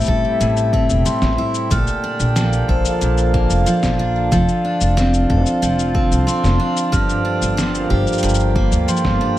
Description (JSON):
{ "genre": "folktronica", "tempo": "92 BPM", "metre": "4/4", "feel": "straight", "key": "F major", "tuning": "A4 = 440 Hz", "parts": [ { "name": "vibraphone with medium mallets", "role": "second line", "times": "0.0-9.4 s", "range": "C5 to F6", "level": "-23 LUFS", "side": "left 3 dB", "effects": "ping-pong delay" }, { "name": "pedal harmonium", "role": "sustained chords", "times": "0.0-9.4 s", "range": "C3 to A4", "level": "-24 LUFS", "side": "right 3 dB", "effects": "none" }, { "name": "picked steel-string acoustic guitar", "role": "arpeggios", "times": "0.0-9.4 s", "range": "G2 to A4", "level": "-20 LUFS", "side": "right 1 dB", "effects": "ping-pong delay" }, { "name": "upright bass", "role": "bass", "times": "0.0-9.2 s", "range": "E1 to D2", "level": "-19 LUFS", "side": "equal", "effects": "none" }, { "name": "electronic cabasa and snare drum", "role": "drums", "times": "0.0-9.2 s", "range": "none", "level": "-25 LUFS", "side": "left 2 dB", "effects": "none" }, { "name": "electronic kick drum", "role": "drums", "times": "0.1-9.2 s", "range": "none", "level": "-21 LUFS", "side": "equal", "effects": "none" } ], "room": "studio reverb", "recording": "none", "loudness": "-15 LUFS", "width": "side -14 dB against mid", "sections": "0.0-9.4 A section", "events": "none", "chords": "0.0 Am7; 1.7 Bbmaj7; 4.3 F6; 6.9 Gm7" }